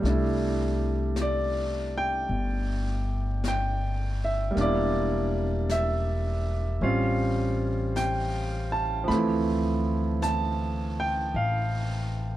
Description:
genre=jazz ballad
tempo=53 BPM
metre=4/4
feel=swing 67% on 8ths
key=C major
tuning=A4 = 440 Hz
part: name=clear baby grand piano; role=accompaniment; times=0.0-12.4 s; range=E3 to B5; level=-27 LUFS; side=right 1 dB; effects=none
part: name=upright bass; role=bass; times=0.0-12.4 s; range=E1 to D2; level=-28 LUFS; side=left 1 dB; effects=none
part: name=jazz brush drum kit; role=drums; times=0.0-12.4 s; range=brushed snare drum, hi-hat, snare drum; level=-40 LUFS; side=left 2 dB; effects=none
room=light reverb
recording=dark, warm production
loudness=-25 LUFS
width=side -14 dB against mid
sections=0.0-12.4 A section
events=none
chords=0.0 C69; 4.6 Em7b5; 6.8 A7alt; 9.1 Dm7

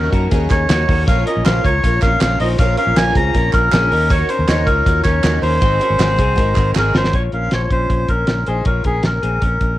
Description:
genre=jangly indie pop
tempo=158 BPM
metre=4/4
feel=straight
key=Bb minor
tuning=A4 = 438 Hz
part: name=melodica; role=melody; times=0.0-9.8 s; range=Ab4 to Bb5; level=-18 LUFS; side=equal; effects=cassette tape
part: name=picked twelve-string acoustic guitar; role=accompaniment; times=0.0-7.2 s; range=Ab2 to Bb4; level=-25 LUFS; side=right 9 dB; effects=none
part: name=electric guitar through a small old amp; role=arpeggios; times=0.0-9.8 s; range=Bb3 to Db5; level=-24 LUFS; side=left 8 dB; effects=none
part: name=fingered electric bass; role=bass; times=0.0-9.8 s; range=Ab1 to Gb2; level=-19 LUFS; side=equal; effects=none
part: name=cloth-damped thuddy drum kit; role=drums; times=0.1-9.7 s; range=hi-hat, kick drum, snare drum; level=-18 LUFS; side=equal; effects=cassette tape
part: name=group handclap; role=percussion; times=0.5-6.8 s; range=none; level=-29 LUFS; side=right 8 dB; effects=none
room=light reverb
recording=home recording on cassette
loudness=-13 LUFS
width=side -15 dB against mid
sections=0.0-7.1 A section; 7.1-9.8 B section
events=drum fill 6.8-7.1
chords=0.0 Ebm7; 1.1 Bbm; 3.9 Ebm7; 5.6 Ab7; 7.1 Bbm

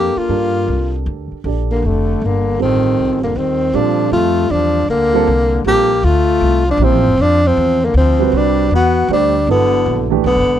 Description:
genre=modal jazz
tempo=157 BPM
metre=3/4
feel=swing 65% on 8ths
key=F major, Bb lydian from 3.7 s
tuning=A4 = 440 Hz
part: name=breathy tenor saxophone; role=melody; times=0.0-10.6 s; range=A3 to G4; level=-15 LUFS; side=equal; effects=none
part: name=brilliant trombone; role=second line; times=0.0-10.6 s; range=D3 to B3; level=-22 LUFS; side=left 13 dB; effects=none
part: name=dark baby grand piano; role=accompaniment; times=0.0-10.2 s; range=E3 to D5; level=-20 LUFS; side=right 18 dB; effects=none
part: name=upright bass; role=bass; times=0.0-10.6 s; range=E1 to Bb2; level=-18 LUFS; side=equal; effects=none
room=light reverb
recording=dry, close 1970s-style studio recording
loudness=-12 LUFS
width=side -10 dB against mid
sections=0.0-3.7 A section; 3.7-10.6 B section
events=none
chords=0.0 Ebmaj9 (rootless); 2.6 F9; 3.7 Bbmaj9; 8.3 Cmaj9

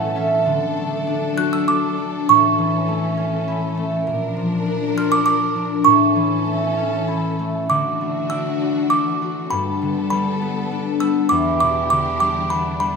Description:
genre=children's music, lullaby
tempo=100 BPM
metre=3/4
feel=rubato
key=D major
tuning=A4 = 440 Hz
part: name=music box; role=melody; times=0.0-13.0 s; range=B5 to F#6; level=-19 LUFS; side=right 5 dB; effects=none
part: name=concert harp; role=accompaniment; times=0.0-13.0 s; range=E2 to A5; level=-20 LUFS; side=left 2 dB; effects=none
part: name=warm symphonic string section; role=sustained chords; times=0.0-13.0 s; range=E3 to Bb4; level=-26 LUFS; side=left 2 dB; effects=none
room=moderate recital hall reverb, RT60 1.7 s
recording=minimal, uncompressed stereo recording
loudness=-17 LUFS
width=side -5 dB against mid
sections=0.0-7.7 A section; 7.7-13.0 B section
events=harp fill 0.0-0.5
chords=0.5 D; 2.3 A; 4.1 Bb; 5.9 A; 7.7 Dadd9; 9.5 Gadd9; 11.3 Em7

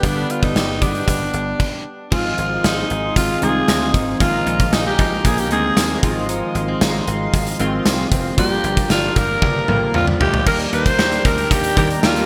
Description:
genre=1980s-style pop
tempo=115 BPM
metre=4/4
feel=straight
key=unclear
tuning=A4 = 440 Hz
part: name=raspy alto saxophone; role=melody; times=0.0-12.3 s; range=D4 to C5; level=-23 LUFS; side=equal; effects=none
part: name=chorused retro synth keys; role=accompaniment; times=0.0-12.3 s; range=D3 to Bb4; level=-27 LUFS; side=equal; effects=none
part: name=chorused pulse-width pad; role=sustained chords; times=0.0-12.3 s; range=Ab3 to C6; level=-31 LUFS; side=equal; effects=none
part: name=direct-recorded clean electric guitar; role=riff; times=0.0-12.3 s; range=F3 to Ab4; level=-30 LUFS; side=equal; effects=none
part: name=dry thumbed slap bass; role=bass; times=0.0-12.2 s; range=F1 to G2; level=-27 LUFS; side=equal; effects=none
part: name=gated 80s drum kit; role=drums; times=0.0-12.3 s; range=crash cymbal, hi-hat, kick drum, snare drum, tambourine, toms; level=-22 LUFS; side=equal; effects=gated reverb
room=moderate lush hall reverb, RT60 2.4 s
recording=bright 1980s-style digital production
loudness=-18 LUFS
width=mono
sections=0.0-2.1 A section; 2.1-10.5 B section; 10.5-12.3 C section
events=stop 1.6-2.1; drum fill 9.4-10.5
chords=0.0 G; 2.1 Ab6; 4.2 Bb7sus4; 6.0 Ab6; 8.4 Gm7; 10.5 Ebmaj7

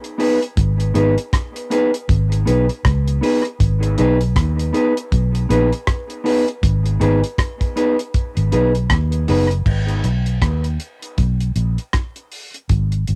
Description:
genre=dub reggae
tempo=79 BPM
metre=4/4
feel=swing 59% on 16ths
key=G# minor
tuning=A4 = 438 Hz
part: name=damped 70s drum kit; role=drums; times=0.0-13.2 s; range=crash cymbal, hi-hat, kick drum, rim click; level=-23 LUFS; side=equal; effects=cassette tape
part: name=mellow electric guitar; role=accompaniment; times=0.2-9.5 s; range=B3 to B4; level=-22 LUFS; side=equal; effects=dub echo
part: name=vintage muted fingered electric bass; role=bass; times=0.6-13.2 s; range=F#1 to D#2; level=-19 LUFS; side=equal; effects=none
room=light reverb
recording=home recording on cassette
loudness=-18 LUFS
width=mono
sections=0.0-9.7 A section; 9.7-13.2 B section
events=break 9.7-13.2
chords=0.0 G#m

